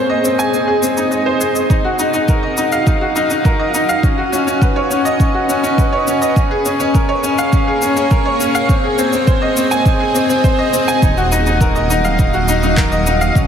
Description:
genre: piano and strings electronica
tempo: 103 BPM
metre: 4/4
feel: straight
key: Eb minor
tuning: A4 = 441 Hz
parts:
  - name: granular cloud pad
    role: sustained chords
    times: 0.0-13.5 s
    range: Gb3 to F5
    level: -21 LUFS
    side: right 1 dB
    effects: built-in reverb, sidechain pumping, shimmer reverb
  - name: bright upright piano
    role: riff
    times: 0.0-13.5 s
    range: C4 to Ab5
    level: -15 LUFS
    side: left 1 dB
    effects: ping-pong delay, shimmer reverb
  - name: electronic shaker and handclaps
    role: drums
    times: 0.2-13.5 s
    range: none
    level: -24 LUFS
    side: left 2 dB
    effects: high-pass filter on perc, high-pass filter on snare, high-pass filter on room
  - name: electronic kick drum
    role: drums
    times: 1.7-13.5 s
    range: none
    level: -14 LUFS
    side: right 1 dB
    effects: none
  - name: dark detuned saw bass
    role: bass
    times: 11.0-13.5 s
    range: Eb1 to B1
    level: -18 LUFS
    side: right 1 dB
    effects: sidechain pumping
room: moderate concert hall reverb, RT60 2.4 s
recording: none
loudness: -12 LUFS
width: side -8 dB against mid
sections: 0.0-11.0 A section; 11.0-13.5 B section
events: build-up 0.0-11.0; filter sweep on ambient pad 0.0-11.0; drop 11.0-13.5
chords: 0.0 Ab; 1.7 Ebmadd9; 4.0 Badd9; 6.4 Bbm7; 8.7 Ab; 11.0 Ebmadd9

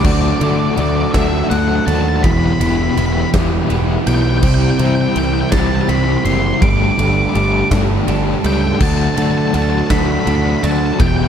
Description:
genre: post-rock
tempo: 55 BPM (dotted quarters)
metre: 6/8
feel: straight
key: unclear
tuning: A4 = 440 Hz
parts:
  - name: octave-fuzz lead guitar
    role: melody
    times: 0.0-11.3 s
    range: D5 to D6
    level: -22 LUFS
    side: equal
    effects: distortion, slapback echo
  - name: clear studio string section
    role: sustained chords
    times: 0.0-11.3 s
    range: E4 to A5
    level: -31 LUFS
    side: right 2 dB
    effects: none
  - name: twelve-string electric guitar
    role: arpeggios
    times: 0.0-11.3 s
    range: E2 to D4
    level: -22 LUFS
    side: left 2 dB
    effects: slapback echo
  - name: overdriven electric guitar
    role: riff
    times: 0.0-11.3 s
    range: C3 to G4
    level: -20 LUFS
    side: left 10 dB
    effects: tremolo
  - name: overdriven semi-hollow guitar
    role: riff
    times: 0.0-11.3 s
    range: E2 to D4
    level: -21 LUFS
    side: right 13 dB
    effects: none
  - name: fuzz picked electric bass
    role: bass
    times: 0.0-11.3 s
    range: E1 to D3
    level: -18 LUFS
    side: equal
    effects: overdrive
  - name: huge arena drum kit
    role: drums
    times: 0.0-11.2 s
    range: crash cymbal, kick drum, ride cymbal, snare drum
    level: -20 LUFS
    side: equal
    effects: none
room: little or no reverb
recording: dark, warm production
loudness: -13 LUFS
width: side -8 dB against mid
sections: 0.0-11.3 A section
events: none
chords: 0.0 D; 2.2 Em; 4.4 C; 6.6 Gsus2; 8.8 D

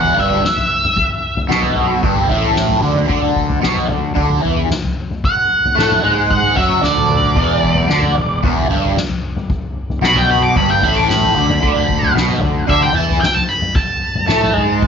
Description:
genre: psychedelic rock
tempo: 113 BPM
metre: 4/4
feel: straight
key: unclear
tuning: A4 = 439 Hz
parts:
  - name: octave-fuzz lead guitar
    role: melody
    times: 0.0-2.0, 5.3-14.8 s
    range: D5 to D6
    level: -17 LUFS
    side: right 1 dB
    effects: wah, distortion, tape echo
  - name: fuzz guitar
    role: riff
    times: 0.0-14.9 s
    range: E2 to A3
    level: -16 LUFS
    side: equal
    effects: distortion, phaser
  - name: fuzz fingered electric bass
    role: bass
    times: 0.0-14.9 s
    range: E1 to A2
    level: -21 LUFS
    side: equal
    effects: overdrive
  - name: soft-mallet drum kit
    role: drums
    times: 0.0-14.9 s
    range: kick drum, snare drum, toms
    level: -19 LUFS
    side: left 2 dB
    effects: none
room: small room ambience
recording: 1960s-style stereo, nothing above 7.5 kHz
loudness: -13 LUFS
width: side -6 dB against mid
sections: 0.0-14.9 A section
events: lead electric guitar solo 0.0-14.9; drum fill 6.8-7.4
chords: 0.0 E5; 3.1 D5; 7.4 E5; 11.6 D5

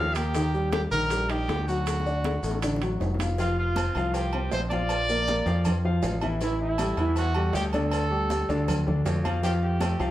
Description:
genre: latin, salsa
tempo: 159 BPM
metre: 4/4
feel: straight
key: unclear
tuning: A4 = 438 Hz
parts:
  - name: warm trumpet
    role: melody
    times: 0.0-10.1 s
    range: E4 to F5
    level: -30 LUFS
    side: right 2 dB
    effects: none
  - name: warm grand piano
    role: accompaniment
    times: 0.0-10.1 s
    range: D3 to F5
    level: -29 LUFS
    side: left 1 dB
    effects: none
  - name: modern bright picked electric bass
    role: bass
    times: 0.0-10.1 s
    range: F1 to F2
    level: -28 LUFS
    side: equal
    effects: none
  - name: maracas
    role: percussion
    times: 0.2-10.1 s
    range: none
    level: -44 LUFS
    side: left 1 dB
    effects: none
  - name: timbales and agogo bells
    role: percussion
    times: 0.2-10.1 s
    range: none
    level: -36 LUFS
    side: right 3 dB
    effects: none
  - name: bongos and cowbell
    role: percussion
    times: 0.4-10.0 s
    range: none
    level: -37 LUFS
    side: left 3 dB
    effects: none
  - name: congas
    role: percussion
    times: 0.4-10.1 s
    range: none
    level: -34 LUFS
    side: equal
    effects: none
room: moderate studio reverb, RT60 0.8 s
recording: heard from further back in the room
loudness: -24 LUFS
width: side -14 dB against mid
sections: 0.0-3.4 A section; 3.4-10.1 B section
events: drum fill 1.9-3.4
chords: 0.4 Eb; 1.9 D; 3.4 Fsus2; 4.9 Bb; 6.4 A5; 7.9 Dsus4; 8.7 Dm; 9.4 F

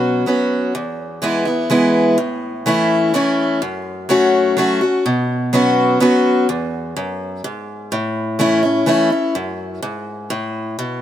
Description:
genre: country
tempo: 126 BPM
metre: 3/4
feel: straight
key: E major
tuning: A4 = 441 Hz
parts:
  - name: picked acoustic archtop guitar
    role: solo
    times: 0.0-11.0 s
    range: E2 to F#4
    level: -15 LUFS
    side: equal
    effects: none
room: moderate plate reverb, RT60 2.9 s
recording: none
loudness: -15 LUFS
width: side -11 dB against mid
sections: 0.8-11.0 A section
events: none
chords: 0.0 Bsus2; 0.8 E; 2.2 A; 3.6 F#m; 5.1 Bsus2; 6.5 E; 7.9 A; 9.4 F#m

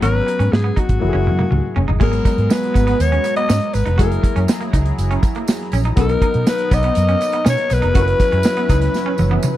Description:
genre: polished 1980s jazz-funk pop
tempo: 121 BPM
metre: 4/4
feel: straight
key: unclear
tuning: A4 = 437 Hz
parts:
  - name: breathy alto saxophone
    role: melody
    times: 0.0-9.5 s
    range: F#4 to D#5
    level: -20 LUFS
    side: left 2 dB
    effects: none
  - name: clear grand piano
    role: accompaniment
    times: 0.0-9.6 s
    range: F#3 to A#5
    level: -25 LUFS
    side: left 4 dB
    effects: wide subtle chorus
  - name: electric guitar at the edge of break-up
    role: riff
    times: 0.0-9.5 s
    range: G#3 to F#4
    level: -27 LUFS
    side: right 5 dB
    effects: lush chorus
  - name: vintage muted fingered electric bass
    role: bass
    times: 0.0-9.4 s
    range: E#1 to B2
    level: -18 LUFS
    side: equal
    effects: none
  - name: modern studio drum kit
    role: drums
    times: 0.0-9.6 s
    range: crash cymbal, hi-hat, kick drum, snare drum, toms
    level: -18 LUFS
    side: equal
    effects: none
  - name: chorused pulse-width pad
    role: sustained chords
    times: 2.0-9.6 s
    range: F#3 to A#5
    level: -26 LUFS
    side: right 2 dB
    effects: none
  - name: tambourine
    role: percussion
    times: 2.3-9.5 s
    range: none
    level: -36 LUFS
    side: right 10 dB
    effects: none
room: small room ambience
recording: dry, close 1970s-style studio recording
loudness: -14 LUFS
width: side -14 dB against mid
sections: 0.0-2.0 A section; 2.0-9.6 B section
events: drum fill 1.0-2.0, 8.9-9.6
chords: 0.0 G#m11; 1.0 F#9; 2.0 G#m9; 4.0 F#9; 6.0 Bmaj7; 8.0 F#7sus4

